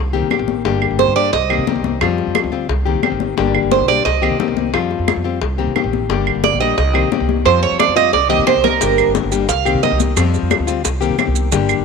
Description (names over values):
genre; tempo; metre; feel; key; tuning
latin, Cuban son and guajira; 177 BPM; 4/4; straight; unclear; A4 = 441 Hz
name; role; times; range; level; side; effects
upright bass; bass; 0.0-11.8 s; G1 to C3; -21 LUFS; right 1 dB; none
nylon-string guitar; accompaniment; 0.1-11.8 s; D3 to G4; -19 LUFS; left 10 dB; none
bongos; percussion; 0.1-11.8 s; none; -25 LUFS; left 12 dB; none
congas; percussion; 0.1-11.8 s; none; -24 LUFS; left 13 dB; none
claves; percussion; 0.3-11.8 s; none; -23 LUFS; right 14 dB; none
Cuban tres; arpeggios; 1.0-1.6, 3.7-4.4, 6.4-10.0 s; Bb4 to F5; -16 LUFS; right 12 dB; none
maracas; percussion; 8.8-11.8 s; none; -26 LUFS; right 15 dB; none
room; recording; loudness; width
moderate plate reverb, RT60 2.8 s; 1960s-style stereo with parts hard left and right, faint mains hum; -14 LUFS; side -5 dB against mid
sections
0.0-11.8 A section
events
Cuban tres solo 0.0-11.8; drum fill 7.8-8.8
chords
0.0 Cm7; 0.7 Gm; 1.3 Cm7; 2.0 Fsus2; 2.7 Cm7; 3.4 Gm; 4.1 Cm7; 4.7 Fsus2; 5.4 Cm7; 6.1 Gm; 6.8 Cm7; 7.5 Fsus2; 8.1 Cm7; 8.8 Gm; 9.5 Cm7; 10.2 Fsus2; 10.8 Cm7